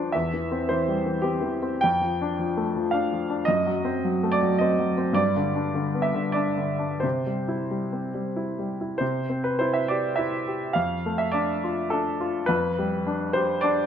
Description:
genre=classical, romantic character piece for solo piano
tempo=86-113 BPM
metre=3/4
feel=rubato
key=C major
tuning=A4 = 440 Hz
part: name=clear grand piano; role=solo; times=0.0-13.9 s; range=E2 to G5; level=-23 LUFS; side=equal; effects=none
room=moderate recital hall reverb, RT60 1.7 s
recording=close, detailed microphones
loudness=-23 LUFS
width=side -8 dB against mid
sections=0.0-9.0 A section; 9.0-13.9 A section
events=none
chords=0.1 C/E; 1.8 Dm/F; 3.5 F#dim7; 5.2 G; 7.0 C; 10.8 Dm/F; 12.5 G7/F

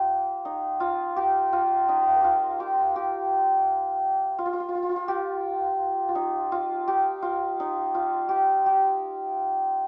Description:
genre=indian classical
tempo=84 BPM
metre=4/4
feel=straight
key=Eb raga bhupali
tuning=A4 = 438 Hz
part: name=santur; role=solo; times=0.0-9.9 s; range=Eb4 to C6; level=-25 LUFS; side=equal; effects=none
room=wet studio reverb, RT60 0.7 s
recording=none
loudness=-25 LUFS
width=mono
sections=0.0-8.7 A section; 8.7-9.9 B section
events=none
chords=none

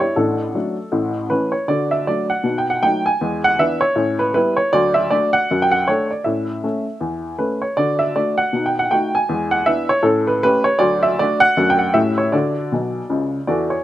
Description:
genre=jazz, stride piano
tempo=158 BPM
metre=4/4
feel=swing 60% on 8ths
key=D major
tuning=A4 = 439 Hz
part: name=warm upright piano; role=solo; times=0.0-13.8 s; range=A1 to G#5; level=-16 LUFS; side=equal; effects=slapback echo
room=light reverb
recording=recorded outdoors, with no room sound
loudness=-16 LUFS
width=side -13 dB against mid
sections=0.0-1.7 A section; 1.7-13.8 B section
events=upright piano fill 12.7-13.8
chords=0.2 D/A; 0.9 A; 1.7 D; 2.4 B7; 3.2 E7; 4.0 A9; 4.7 D; 5.5 D/F#; 6.3 A; 7.8 D; 8.5 B7; 9.3 E7; 10.1 A7; 10.8 D; 11.6 D/F#; 12.0 A7; 12.3 D

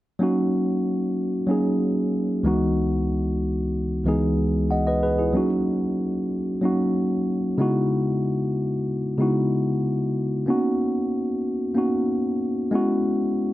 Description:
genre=soul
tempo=93 BPM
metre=4/4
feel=straight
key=unclear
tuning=A4 = 441 Hz
part: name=tine electric piano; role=solo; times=0.2-13.5 s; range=C#2 to F#5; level=-21 LUFS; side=equal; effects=none
room=light reverb, digital ambience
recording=none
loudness=-21 LUFS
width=side -15 dB against mid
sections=0.2-5.3 A section; 5.3-13.5 B section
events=none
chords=0.2 D#m7; 2.5 C#m11; 5.3 D#m7; 7.6 C#m11; 10.5 Bmaj9; 12.7 E6

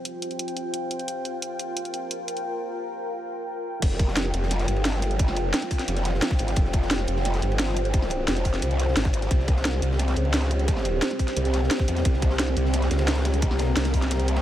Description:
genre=dark technical drum and bass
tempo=175 BPM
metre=4/4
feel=straight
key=unclear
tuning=A4 = 440 Hz
part: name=deep dark ambient pad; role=sustained chords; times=0.0-14.4 s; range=C4 to G5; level=-29 LUFS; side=equal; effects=chorus, built-in reverb, sidechain pumping
part: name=drum and bass drum kit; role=drums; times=0.1-14.3 s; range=crash cymbal, hi-hat, snare drum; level=-29 LUFS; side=right 1 dB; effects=high-pass filter on hats, high-pass filter on cymbals, high-pass filter on snare
part: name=growl bass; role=bass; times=3.8-14.4 s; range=F1 to E2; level=-24 LUFS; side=equal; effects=chorus, sidechain pumping
part: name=crunchy breakbeat drum kit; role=drums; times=3.8-14.4 s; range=ride cymbal, snare drum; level=-38 LUFS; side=equal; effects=none
part: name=electronic kick drum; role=drums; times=3.8-14.0 s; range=none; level=-23 LUFS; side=equal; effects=none
room=light reverb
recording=high-pass filter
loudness=-22 LUFS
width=side -12 dB against mid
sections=0.0-3.8 A section; 3.8-14.4 B section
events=build-up 0.0-3.8; filter sweep 0.0-3.8; drop 3.8-14.4; kick drops out 14.1-14.4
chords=0.0 F5; 9.3 C5

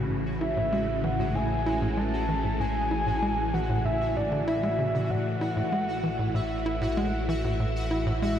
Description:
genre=ambient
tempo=96 BPM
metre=4/4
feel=straight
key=A major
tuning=A4 = 440 Hz
part: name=phased string machine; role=sustained chords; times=0.0-8.4 s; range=A2 to E4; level=-31 LUFS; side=equal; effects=ensemble chorus, phaser
part: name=tight sequencer bass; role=riff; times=0.0-8.4 s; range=A2 to E4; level=-31 LUFS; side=equal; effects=analog delay
part: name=analog drone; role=bass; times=0.0-8.4 s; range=A1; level=-33 LUFS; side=equal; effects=chorus
part: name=pulsing gated texture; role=texture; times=0.0-8.4 s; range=G#3 to F#5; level=-36 LUFS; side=equal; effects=chorus, built-in reverb
part: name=soft octave-layered synth lead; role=melody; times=0.4-8.4 s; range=D5 to A5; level=-30 LUFS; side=equal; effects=chorus, analog delay
room=wet huge ambient reverb, RT60 7.7 s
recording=faint mains hum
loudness=-25 LUFS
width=side -9 dB against mid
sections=0.0-8.4 A section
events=none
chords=0.0 Amaj7

